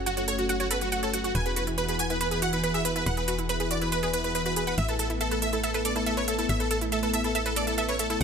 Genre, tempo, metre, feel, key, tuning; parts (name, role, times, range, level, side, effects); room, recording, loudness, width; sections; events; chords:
uplifting trance; 140 BPM; 4/4; straight; A4 = 440 Hz
lush unison pad; sustained chords; 0.0-8.2 s; E3 to B4; -32 LUFS; equal; chorus
tight sequencer bass; bass; 0.0-8.2 s; E1 to A1; -33 LUFS; equal
dense compressed supersaw; melody; 0.1-8.2 s; F#4 to G#5; -28 LUFS; equal; digital delay
analog pluck; arpeggios; 0.1-8.2 s; E4 to F#5; -33 LUFS; right 3 dB; chorus, vintage 12-bit sampler grit, digital delay
electronic hi-hat; drums; 0.1-8.2 s; -32 LUFS; right 2 dB
light reverb, digital ambience; -24 LUFS; side -6 dB against mid
0.0-8.2 A section
0.0 F#m; 1.4 Eadd9; 4.8 Asus2